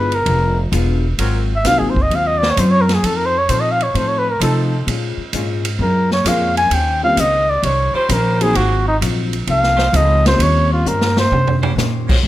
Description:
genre	jazz, big band swing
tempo	130 BPM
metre	4/4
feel	swing 68% on 8ths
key	unclear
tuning	A4 = 440 Hz
part	trumpet with bucket mute	melody	0.0-11.6 s	Eb4 to Ab5	-16 LUFS	equal	none
part	dark upright piano	accompaniment	0.0-10.8 s	F3 to Ab4	-22 LUFS	left 1 dB	none
part	hollow-body jazz guitar	accompaniment	0.0-12.3 s	Ab2 to C5	-26 LUFS	left 6 dB	none
part	upright bass	bass	0.0-12.3 s	Fb1 to C3	-18 LUFS	equal	none
part	swinging big-band drum kit	drums	0.1-12.3 s	crash cymbal, hi-hat, kick drum, ride cymbal, snare drum, toms	-22 LUFS	right 1 dB	none
part	edgy saxophone section	sustained chords	1.2-12.2 s	Ab2 to C5	-26 LUFS	right 1 dB	none
room	light reverb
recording	none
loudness	-13 LUFS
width	side -14 dB against mid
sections	0.0-12.2 A section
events	muted trumpet solo 0.0-12.2; drum fill 10.9-11.8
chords	0.0 Ddim7; 1.2 Ab13; 3.0 F7; 4.9 Bbm7; 6.7 Eb13; 8.6 Ab13; 9.5 F7; 10.4 Eb13

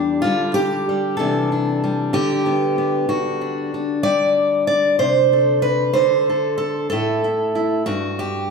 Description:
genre	folk, solo fingerstyle acoustic guitar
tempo	63 BPM (dotted quarters)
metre	6/8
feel	straight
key	G major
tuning	A4 = 440 Hz
part	fingerpicked steel-string acoustic guitar	solo	0.0-8.5 s	E2 to D5	-17 LUFS	equal	none
room	wet recital hall reverb, RT60 1.4 s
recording	recorded in a church or concert hall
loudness	-17 LUFS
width	side -5 dB against mid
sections	0.0-8.5 A section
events	none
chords	0.2 G5/D; 1.2 Cadd9; 2.1 G/D; 3.1 G5; 5.0 Amadd11/C; 6.0 D5; 6.9 A5; 7.9 N.C.

